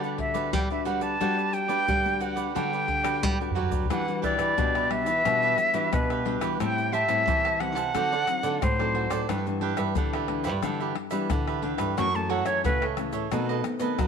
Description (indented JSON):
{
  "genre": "samba and choro",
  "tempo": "89 BPM",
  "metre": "4/4",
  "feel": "straight",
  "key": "G major, E minor from 3.9 s",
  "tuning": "A4 = 438 Hz",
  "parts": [
    { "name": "bright concert flute", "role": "melody", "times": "0.0-12.9 s", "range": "B4 to C#6", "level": "-26 LUFS", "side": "equal", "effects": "none" },
    { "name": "cavaquinho", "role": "accompaniment", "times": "0.0-14.1 s", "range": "D4 to A5", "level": "-32 LUFS", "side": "right 12 dB", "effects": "none" },
    { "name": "nylon-string guitar", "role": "accompaniment", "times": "0.0-14.1 s", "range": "F#2 to F#4", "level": "-33 LUFS", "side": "left 11 dB", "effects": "none" },
    { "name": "nylon-string guitar", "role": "bass", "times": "0.0-14.1 s", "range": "F#2 to B3", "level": "-31 LUFS", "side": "equal", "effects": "none" },
    { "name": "tube shaker, pandeiro, surdo and tamborim", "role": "percussion", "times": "0.0-14.1 s", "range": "none", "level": "-31 LUFS", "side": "left 2 dB", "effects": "none" }
  ],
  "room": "moderate echo chamber reverb, RT60 1.4 s, small room ambience",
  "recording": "1960s-style stereo with parts hard left and right",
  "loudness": "-24 LUFS",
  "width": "side -6 dB against mid",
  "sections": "0.0-3.9 A section; 3.9-14.1 B section",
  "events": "drum fill 3.1-3.9; flute solo 3.9-14.1",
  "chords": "0.0 Gmaj7; 3.9 Em9; 6.6 Am7; 7.9 D7b9; 9.3 G6; 12.0 F#m7; 13.3 B7b9"
}